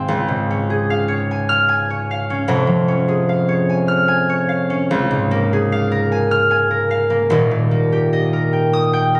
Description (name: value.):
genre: classical, solo harp piece.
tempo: 50 BPM (dotted quarters).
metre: 6/8.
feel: rubato.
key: unclear.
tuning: A4 = 440 Hz.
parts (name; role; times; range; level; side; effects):
concert harp; solo; 0.0-9.2 s; Eb1 to F6; -17 LUFS; equal; none.
room: moderate recital hall reverb, RT60 1.5 s.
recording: recorded on a phone in the room, studio reverb, compression.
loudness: -18 LUFS.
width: mono.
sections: 0.0-9.2 A section.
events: none.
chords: 0.1 Db; 2.5 Db/F; 4.9 Bbm7/Db; 7.3 Eb.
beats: | 0.07 1.28 | 2.49 3.70 | 4.91 6.11 | 7.31 8.52.